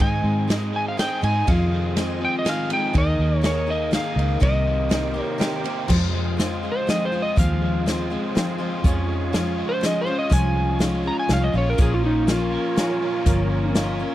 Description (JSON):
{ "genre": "folk rock and heartland rock", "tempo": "122 BPM", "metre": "3/4", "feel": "straight", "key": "F minor", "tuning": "A4 = 440 Hz", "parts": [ { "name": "electric slide guitar", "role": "melody", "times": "0.0-13.7 s", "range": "Eb4 to Bb5", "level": "-25 LUFS", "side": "equal", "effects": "none" }, { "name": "picked steel-string acoustic guitar", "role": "accompaniment", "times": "0.0-14.1 s", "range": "F2 to Ab4", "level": "-28 LUFS", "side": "left 3 dB", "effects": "none" }, { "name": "warm upright piano", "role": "accompaniment", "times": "0.0-14.1 s", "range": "F4 to Eb5", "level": "-36 LUFS", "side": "right 2 dB", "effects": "none" }, { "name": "musette accordion", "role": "sustained chords", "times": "0.0-14.1 s", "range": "C4 to Eb5", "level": "-35 LUFS", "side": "right 3 dB", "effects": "none" }, { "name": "overdriven electric guitar", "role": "riff", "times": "0.0-14.1 s", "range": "F2 to Ab4", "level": "-28 LUFS", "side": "right 1 dB", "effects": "none" }, { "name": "vintage muted fingered electric bass", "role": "bass", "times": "0.0-14.0 s", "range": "G1 to Ab2", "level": "-23 LUFS", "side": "equal", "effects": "none" }, { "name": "unplugged drum kit", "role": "drums", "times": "0.0-13.9 s", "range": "crash cymbal, hi-hat, kick drum, ride cymbal, snare drum", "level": "-23 LUFS", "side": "equal", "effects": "none" } ], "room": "little or no reverb", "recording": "dry, close 1970s-style studio recording", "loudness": "-19 LUFS", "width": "side -14 dB against mid", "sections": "0.0-5.9 A section; 5.9-14.1 B section", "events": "electric slide guitar solo 5.9-14.1", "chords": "0.0 Ab; 1.5 Fm7; 3.0 Ebsus4; 4.4 Cm7; 5.9 Fm; 8.8 Db/F; 11.8 Bbm" }